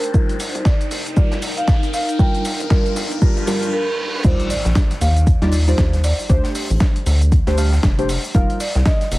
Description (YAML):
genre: deep house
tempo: 117 BPM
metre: 4/4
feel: swing 59% on 16ths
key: unclear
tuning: A4 = 440 Hz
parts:
  - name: marimba with medium mallets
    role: melody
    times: 0.0-9.2 s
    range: Bb4 to G5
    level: -26 LUFS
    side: right 1 dB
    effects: analog delay
  - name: dusty soul sampler-style drum kit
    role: drums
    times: 0.0-9.2 s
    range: crash cymbal, hi-hat, shaker, snare drum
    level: -26 LUFS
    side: equal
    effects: high-pass filter on perc, small room ambience, high-pass filter on hats, high-pass filter on snare, high-pass filter on cymbals
  - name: riser, reverse cymbal and impact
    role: sound effects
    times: 0.0-6.3 s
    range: none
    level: -30 LUFS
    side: equal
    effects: none
  - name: granular cloud pad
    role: texture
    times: 0.0-3.7 s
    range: D4 to A5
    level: -29 LUFS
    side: left 1 dB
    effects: built-in reverb, sidechain pumping
  - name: deep mellow chord stab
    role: stabs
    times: 0.1-8.6 s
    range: G3 to F5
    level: -24 LUFS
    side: equal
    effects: chorus, sidechain pumping, analog delay
  - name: rubbery square bass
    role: bass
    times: 0.1-9.2 s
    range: D1 to Eb2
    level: -18 LUFS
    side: equal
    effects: sidechain pumping, high-pass filter
  - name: electronic kick drum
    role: drums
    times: 0.1-9.0 s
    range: none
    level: -16 LUFS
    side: equal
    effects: small room ambience
  - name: tight funk drum kit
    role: drums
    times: 4.2-9.2 s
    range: hi-hat, snare drum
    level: -36 LUFS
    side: left 1 dB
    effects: none
room: light reverb, studio reverb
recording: dense, heavily limited modern master, vinyl crackle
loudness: -15 LUFS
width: side -19 dB against mid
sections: 0.0-4.2 A section; 4.2-9.2 B section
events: build-up 0.0-4.2; riser 0.0-3.7; filter sweep on synth stab 0.0-4.2; reverse cymbal 3.2-4.2; break 3.7-4.2; drop 4.2-9.2; impact 4.2-6.3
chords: 0.0 F9sus4; 2.2 Gm7; 4.2 Ebmaj9; 6.3 D7sus4; 8.1 F9sus4